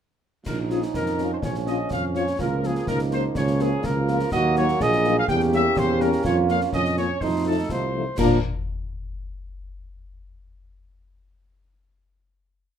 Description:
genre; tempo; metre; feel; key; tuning
military-style march for wind band; 124 BPM; 2/4; straight; Bb minor; A4 = 442 Hz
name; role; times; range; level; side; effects
mellow trumpet section; melody; 0.5-8.4 s; Ab4 to G5; -27 LUFS; left 2 dB; none
clear euphonium; second line; 0.5-7.9 s; Db4 to Ab4; -26 LUFS; right 3 dB; none
bright trombone section; sustained chords; 0.5-8.4 s; F3 to Eb4; -31 LUFS; right 2 dB; none
mellow tuba; bass; 0.5-8.4 s; Bb1 to Bb2; -25 LUFS; right 3 dB; none
concert snare drum, clash cymbals and concert bass drum; drums; 0.5-8.4 s; none; -32 LUFS; left 2 dB; none
dark French horn section; accompaniment; 0.7-8.4 s; F3 to F4; -27 LUFS; left 8 dB; none
room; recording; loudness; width
light reverb; close, detailed microphones; -20 LUFS; side -8 dB against mid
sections
0.5-8.2 A section; 8.2-9.1 final chord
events
none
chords
0.5 Bbm; 2.4 Bbm/Db; 4.3 Ebm; 5.3 Edim7; 6.2 Bbm/F; 7.2 F7; 8.2 Bb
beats
| 0.46 0.94 | 1.43 1.91 | 2.39 2.87 | 3.36 3.84 | 4.32 4.80 | 5.29 5.77 | 6.25 6.73 | 7.21 7.70 | 8.18

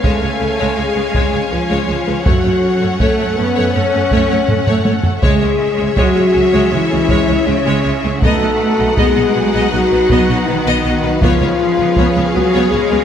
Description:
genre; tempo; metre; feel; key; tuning
cinematic, epic orchestral film score; 80 BPM; 4/4; straight; unclear; A4 = 439 Hz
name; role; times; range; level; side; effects
rich symphonic violin section; melody; 0.0-13.0 s; E5 to F#5; -26 LUFS; left 2 dB; none
rich symphonic violin section; second line; 0.0-13.0 s; G#4 to D#5; -24 LUFS; left 3 dB; none
rich symphonic viola section; accompaniment; 0.0-13.0 s; G#3 to B3; -21 LUFS; equal; none
rich symphonic string section; sustained chords; 0.0-13.0 s; C#4 to G#5; -22 LUFS; left 1 dB; none
clear symphonic cello section; bass; 0.0-13.0 s; C#3 to C#4; -20 LUFS; right 3 dB; none
rich chamber double bass section; bass; 0.0-13.0 s; B1 to F#2; -21 LUFS; right 4 dB; none
solo taiko drums; drums; 0.0-12.7 s; none; -18 LUFS; equal; none
warm French horn section; sustained chords; 0.1-13.0 s; C#4 to C#5; -17 LUFS; left 4 dB; none
timpani; percussion; 5.2-6.3 s; C#3; -24 LUFS; right 2 dB; none
room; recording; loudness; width
moderate concert hall reverb, RT60 2.2 s; none; -12 LUFS; side -8 dB against mid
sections
0.0-13.0 A section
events
drum fill 4.5-5.2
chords
0.0 C#; 2.3 F#m; 5.2 C#m; 8.2 B7; 11.2 C#7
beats
0.04 0.78 1.51 | 2.25 3.00 3.74 4.48 | 5.22 5.97 6.72 7.47 | 8.23 8.98 9.72 10.47 | 11.22 11.97 12.71

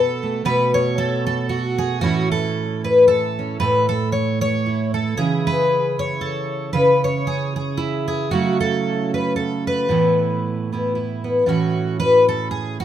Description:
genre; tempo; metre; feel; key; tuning
folk, solo fingerstyle acoustic guitar; 114 BPM; 3/4; swing 56% on 8ths; A major; A4 = 440 Hz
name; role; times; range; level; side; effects
fingerpicked twelve-string acoustic guitar; solo; 0.0-12.8 s; A2 to C#5; -17 LUFS; equal; none
room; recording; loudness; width
moderate large studio reverb, RT60 1.0 s; minimal, uncompressed stereo recording; -17 LUFS; side -10 dB against mid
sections
0.0-11.5 A section; 11.5-12.8 B section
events
none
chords
0.0 B5; 2.0 A; 5.2 C#m; 8.3 F#m7/C#; 9.9 Asus2; 11.5 A6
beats
| 0.46 0.98 1.51 | 2.03 2.56 3.08 | 3.60 4.13 4.65 | 5.18 5.70 6.23 | 6.75 7.28 7.80 | 8.32 8.85 9.37 | 9.89 10.42 10.94 | 11.47 11.99 12.52

